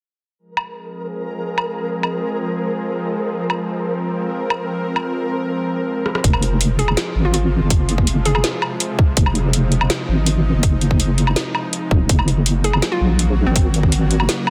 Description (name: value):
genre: half-time drum and bass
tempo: 164 BPM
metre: 4/4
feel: half-time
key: F phrygian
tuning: A4 = 443 Hz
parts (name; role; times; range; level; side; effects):
- bowed-like drone; sustained chords; 0.8-14.5 s; C3 to Bb4; -27 LUFS; equal; built-in reverb, sidechain pumping
- flickering grainy texture; texture; 0.5-5.5 s; Bb4; -30 LUFS; equal; built-in reverb
- drum and bass drum kit; drums; 0.6-14.5 s; hi-hat, rim click, snare drum, woodblock; -24 LUFS; equal; low-pass filter on perc, low-pass filter on snare, low-pass filter on hats, low-pass filter on room
- deep soft wobble bass; bass; 6.2-14.3 s; Eb1 to Bb1; -19 LUFS; equal; chorus
- electronic kick drum; drums; 6.2-13.9 s; none; -18 LUFS; equal; none
- hollow square pluck; melody; 6.8-8.4, 12.6-13.7 s; C4 to Ab4; -28 LUFS; equal; chorus, dub echo
room: moderate lush hall reverb, RT60 2.0 s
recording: dense, heavily limited modern master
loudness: -19 LUFS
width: mono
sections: 0.4-6.2 A section; 6.2-14.5 B section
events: filter sweep on synth drone 0.4-6.2; drum fill 6.1; drop 6.2-14.5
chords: 0.4 Fm; 12.1 Gb